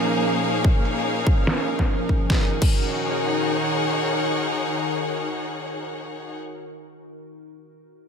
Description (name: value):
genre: heavy wobble dubstep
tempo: 145 BPM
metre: 4/4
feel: swing 54% on 16ths, half-time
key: Eb minor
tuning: A4 = 440 Hz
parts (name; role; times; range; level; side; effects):
- evolving wavetable pad; sustained chords; 0.0-6.4 s; Bb2 to Bb4; -27 LUFS; right 1 dB; chorus, built-in reverb, sidechain pumping
- dubstep drum kit; drums; 0.0-2.7 s; crash cymbal, hi-hat, snare drum; -27 LUFS; equal; low-pass filter on hats, studio reverb, low-pass filter on snare, low-pass filter on cymbals
- clear studio string section; texture; 0.0-6.4 s; Bb3 to Gb5; -26 LUFS; left 2 dB; sidechain pumping
- electronic kick drum; drums; 0.6-2.7 s; none; -20 LUFS; equal; studio reverb
room: moderate lush hall reverb, RT60 2.4 s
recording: none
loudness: -20 LUFS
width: side -6 dB against mid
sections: 0.0-2.3 A section; 2.3-5.6 B section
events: none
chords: 0.0 Bbm; 2.3 Ebm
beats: 0.23 | 0.64 1.06 1.47 1.89 | 2.30 2.71 3.13 3.54 | 3.95 4.37 4.78 5.20